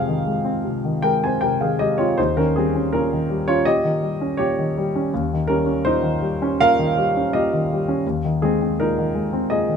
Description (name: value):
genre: neoclassical minimalist piano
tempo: 77-84 BPM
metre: 4/4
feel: rubato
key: unclear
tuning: A4 = 440 Hz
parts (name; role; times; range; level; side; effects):
- warm concert grand piano; solo; 0.0-9.8 s; Eb2 to Ab5; -18 LUFS; equal; none
room: light reverb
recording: minimal, uncompressed stereo recording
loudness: -18 LUFS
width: side -6 dB against mid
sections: 0.0-9.8 A section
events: none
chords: 0.0 Fm7; 2.2 Eb7; 8.0 Abadd9/Eb